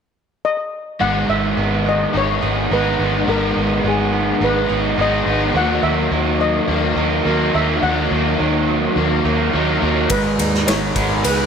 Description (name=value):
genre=rock, shoegaze and dream pop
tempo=106 BPM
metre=4/4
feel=straight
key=G# minor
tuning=A4 = 436 Hz
part: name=steel pan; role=melody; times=0.4-11.5 s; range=G#4 to F#5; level=-22 LUFS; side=left 1 dB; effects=slapback echo
part: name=direct-recorded clean electric guitar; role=arpeggios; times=1.0-11.5 s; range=D#3 to G#4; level=-27 LUFS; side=right 8 dB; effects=wide subtle chorus, slapback echo
part: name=overdriven electric guitar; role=riff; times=1.0-11.5 s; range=G#2 to D#4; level=-20 LUFS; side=left 8 dB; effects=lush chorus
part: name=overdriven semi-hollow guitar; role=riff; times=1.0-11.5 s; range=G#2 to D#4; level=-21 LUFS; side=right 9 dB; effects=reverse reverb
part: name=vintage muted fingered electric bass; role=bass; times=1.0-11.5 s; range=G#1 to D#2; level=-23 LUFS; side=equal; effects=none
part: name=deep dark ambient pad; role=sustained chords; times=10.5-11.5 s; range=D#4 to B5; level=-28 LUFS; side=equal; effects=chorus, built-in reverb
part: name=loose indie drum kit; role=drums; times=10.1-11.4 s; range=kick drum, ride cymbal, snare drum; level=-20 LUFS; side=equal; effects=none
room=moderate lush hall reverb, RT60 2.2 s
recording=none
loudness=-15 LUFS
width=side -7 dB against mid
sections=0.0-1.0 A section; 1.0-10.1 B section; 10.1-11.5 C section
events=none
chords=0.0 N.C.; 1.0 G#m; 5.6 D#m; 10.1 G#m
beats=0.45 | 1.01 1.58 2.15 2.71 | 3.28 3.85 4.42 4.99 | 5.56 6.12 6.69 7.26 | 7.83 8.40 8.97 9.54 | 10.11 10.68 11.25